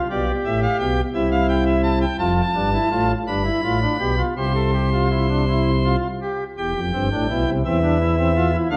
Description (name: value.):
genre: classical, baroque-style 3-part fugue for pipe organ.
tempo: 56 BPM (dotted quarters).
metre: 6/8.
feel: straight.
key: C major.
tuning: A4 = 444 Hz.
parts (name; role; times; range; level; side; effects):
pipe organ, cornet; solo; 0.0-8.8 s; E1 to C6; -20 LUFS; equal; none.
room: wet recital hall reverb, RT60 1.6 s.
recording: worn, warbling old tape, cassette tape, warbly pitch drift.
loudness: -20 LUFS.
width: mono.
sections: 0.0-6.6 A section; 6.6-8.8 B section.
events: none.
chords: 0.1 G; 1.1 C; 2.2 F; 3.3 G7; 4.4 C; 6.6 C/E.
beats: | 0.10 1.15 | 2.20 3.27 | 4.37 5.48 | 6.58 7.65 | 8.71.